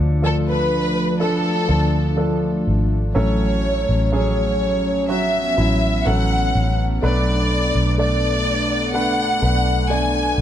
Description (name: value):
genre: pop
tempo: 62 BPM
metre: 4/4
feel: straight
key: A major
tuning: A4 = 441 Hz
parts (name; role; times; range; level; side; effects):
- clear baby grand piano; accompaniment; 0.0-10.4 s; A2 to D5; -23 LUFS; right 1 dB; none
- warm analog pad; sustained chords; 0.0-10.4 s; F3 to D4; -26 LUFS; left 1 dB; chorus
- vintage muted fingered electric bass; bass; 0.0-10.4 s; G#1 to D2; -20 LUFS; equal; none
- warm symphonic violin section; melody; 0.2-10.4 s; A4 to G#5; -22 LUFS; left 1 dB; none
room: light reverb, small room ambience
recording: dark, warm production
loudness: -16 LUFS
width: side -10 dB against mid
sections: 0.0-10.4 A section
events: none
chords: 0.0 Dm; 3.2 A6; 7.0 Bm7